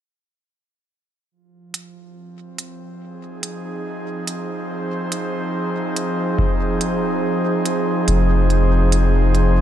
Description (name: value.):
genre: ambient dub.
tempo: 71 BPM.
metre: 4/4.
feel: swing 56% on 16ths.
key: F minor.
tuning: A4 = 441 Hz.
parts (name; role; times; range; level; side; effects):
airy breathy pad; sustained chords; 1.3-9.6 s; F3 to C5; -21 LUFS; right 1 dB; chorus.
electronic hi-hat; drums; 1.7-9.5 s; none; -25 LUFS; right 4 dB; studio reverb.
electronic kick drum; drums; 6.4-6.6 s; none; -22 LUFS; equal; studio reverb.
soft dub sub bass; bass; 8.1-9.6 s; F1; -15 LUFS; equal; none.
room: light reverb.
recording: none.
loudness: -18 LUFS.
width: side -11 dB against mid.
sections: 1.3-8.1 A section; 8.1-9.6 B section.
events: fade-in on analog synth pad 1.3-8.1.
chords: 1.3 Fm7.